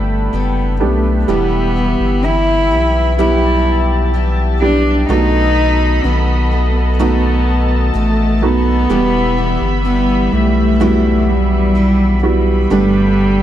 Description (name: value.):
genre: pop ballad.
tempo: 63 BPM.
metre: 4/4.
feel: straight.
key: unclear.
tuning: A4 = 440 Hz.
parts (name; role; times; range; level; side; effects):
dark cello; melody; 0.0-13.4 s; G3 to E4; -16 LUFS; equal; none.
felt-muted upright piano; accompaniment; 0.0-13.4 s; G2 to G4; -19 LUFS; right 4 dB; none.
lush unison pad; sustained chords; 0.0-13.4 s; G3 to B5; -23 LUFS; left 1 dB; chorus.
picked steel-string acoustic guitar; arpeggios; 0.0-13.4 s; E2 to A4; -24 LUFS; left 7 dB; none.
saturated sub bass; bass; 0.0-13.4 s; E1 to B1; -16 LUFS; equal; none.
room: moderate recital hall reverb, RT60 1.7 s, studio ambience.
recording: dark, warm production.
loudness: -12 LUFS.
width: side -11 dB against mid.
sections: 0.0-13.4 A section.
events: none.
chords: 0.0 Gadd9; 1.3 Em; 5.1 B7; 8.9 Em; 12.7 Gadd9.